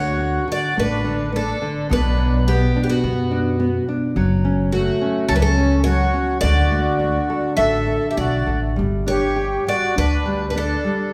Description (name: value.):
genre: fado-style ballad.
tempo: 106 BPM.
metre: 4/4.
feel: rubato.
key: D major.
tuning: A4 = 440 Hz.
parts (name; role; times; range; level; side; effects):
picked twelve-string acoustic guitar; melody; 0.0-11.1 s; F#4 to E5; -26 LUFS; equal; none.
accordion; second line; 0.0-11.1 s; A3 to A4; -26 LUFS; equal; light tremolo tuning.
nylon-string guitar; accompaniment; 0.0-11.1 s; B2 to A4; -26 LUFS; equal; none.
upright bass; bass; 0.0-10.7 s; F#1 to F#2; -24 LUFS; equal; none.
room: wet recital hall reverb, RT60 1.6 s.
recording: heard from further back in the room.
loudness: -19 LUFS.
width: mono.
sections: 0.0-11.1 A section.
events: none.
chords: 0.0 D; 1.9 Bm; 4.2 F#m; 6.4 D; 8.8 Gsus2.